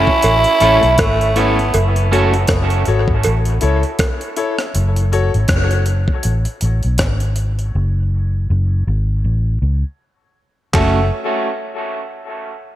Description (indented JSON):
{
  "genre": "dub reggae",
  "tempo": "80 BPM",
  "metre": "4/4",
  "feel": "swing 57% on 16ths",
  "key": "F# minor",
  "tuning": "A4 = 440 Hz",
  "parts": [
    { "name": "raspy tenor saxophone", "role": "melody", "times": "0.0-1.7, 10.8-11.1 s", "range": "A3 to E4", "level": "-18 LUFS", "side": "right 2 dB", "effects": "dub echo" },
    { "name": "electric guitar at the edge of break-up", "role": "accompaniment", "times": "0.0-2.3, 10.7-11.0 s", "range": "A3 to A4", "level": "-22 LUFS", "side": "right 4 dB", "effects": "spring reverb, dub echo" },
    { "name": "clear grand piano", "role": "stabs", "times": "0.0-5.3, 10.7-11.0 s", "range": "E4 to C#5", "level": "-23 LUFS", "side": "left 5 dB", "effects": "dub echo" },
    { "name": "vintage muted fingered electric bass", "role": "bass", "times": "0.0-11.1 s", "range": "F#1 to C#2", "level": "-16 LUFS", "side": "equal", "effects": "none" },
    { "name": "breakbeat sampler-style drum kit", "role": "drums", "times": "0.1-10.9 s", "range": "handclaps, hi-hat, kick drum, rim click", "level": "-20 LUFS", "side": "equal", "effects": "none" },
    { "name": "cowbell", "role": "percussion", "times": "0.2-4.2 s", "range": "none", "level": "-26 LUFS", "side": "right 3 dB", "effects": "dub echo" }
  ],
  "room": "moderate echo chamber reverb, RT60 2.0 s, small room ambience",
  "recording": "echo-heavy mix",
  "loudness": "-14 LUFS",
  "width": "side -13 dB against mid",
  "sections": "0.0-10.7 A section; 10.7-12.8 B section",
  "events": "break 1.7-10.7; part muted 7.7-10.7",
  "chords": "0.2 A; 1.7 F#m; 3.2 A; 4.7 N.C.; 7.7 F#sus2; 9.2 A; 10.7 F#m"
}